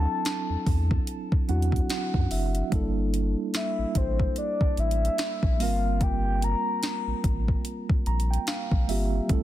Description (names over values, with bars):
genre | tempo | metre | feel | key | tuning
contemporary R&B | 73 BPM | 4/4 | swing 58% on 16ths | unclear | A4 = 440 Hz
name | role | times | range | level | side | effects
soft octave-layered synth lead | melody | 0.0-7.3 s | C5 to Bb5 | -31 LUFS | left 3 dB | chorus, tape echo
mellow tine electric piano | accompaniment | 0.0-9.4 s | F#3 to Bb5 | -31 LUFS | right 3 dB | medium stereo tremolo
warm sub bass | bass | 0.0-9.4 s | F#1 to F#2 | -26 LUFS | equal | none
smooth R&B drum kit | drums | 0.3-9.4 s | hi-hat, kick drum, snare drum | -27 LUFS | equal | overdrive
room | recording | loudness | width
little or no reverb | dense, heavily limited modern master | -24 LUFS | side -13 dB against mid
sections
0.0-9.4 A section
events
tine electric piano fill 1.1-2.7, 7.7-9.3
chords
0.0 D9; 2.7 Gm69; 5.6 C7sus4/G